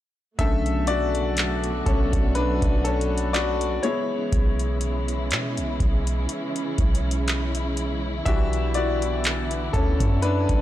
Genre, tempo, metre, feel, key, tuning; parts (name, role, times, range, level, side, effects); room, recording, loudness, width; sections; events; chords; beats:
contemporary R&B; 61 BPM; 4/4; swing 54% on 16ths; B minor; A4 = 441 Hz
bright grand piano; accompaniment; 0.4-10.6 s; C#3 to E5; -26 LUFS; left 3 dB
dark studio string section; sustained chords; 0.4-10.6 s; B2 to F#4; -30 LUFS; right 2 dB
soft 808-style bass; bass; 0.4-10.6 s; B1 to B2; -26 LUFS; equal
booming analog drum machine; drums; 0.4-10.6 s; handclaps, hi-hat, kick drum; -25 LUFS; equal
small room ambience; -21 LUFS; side -13 dB against mid
0.4-10.6 A section
grand piano solo 0.4-10.6
0.4 Bm7; 3.8 C#m7/B; 8.3 Em9/B
| 0.39 1.37 2.36 3.34 | 4.33 5.31 6.29 7.28 | 8.26 9.24 10.23